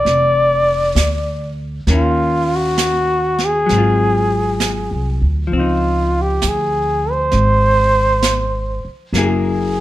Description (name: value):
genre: jazz ballad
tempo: 66 BPM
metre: 4/4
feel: swing 69% on 8ths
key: unclear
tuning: A4 = 440 Hz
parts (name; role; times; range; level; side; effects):
- mellow flugelhorn; melody; 0.0-9.8 s; F4 to D5; -16 LUFS; equal; plate reverb
- hollow-body jazz guitar; accompaniment; 0.0-9.8 s; Eb3 to Ab4; -22 LUFS; left 4 dB; none
- upright bass; bass; 0.1-9.8 s; F1 to Eb2; -19 LUFS; equal; none
- jazz brush drum kit; drums; 0.1-9.8 s; brushed snare drum, hi-hat, snare drum; -24 LUFS; right 4 dB; none
room: light reverb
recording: close, detailed microphones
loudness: -14 LUFS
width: side -14 dB against mid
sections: 0.0-9.8 A section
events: none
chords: 0.0 Bb (rootless); 1.9 Ebm7; 3.7 Ab6; 5.5 Dbmaj9; 9.1 Gb9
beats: 0.06 0.96 | 1.86 2.77 3.67 4.59 | 5.50 6.41 7.32 8.22 | 9.13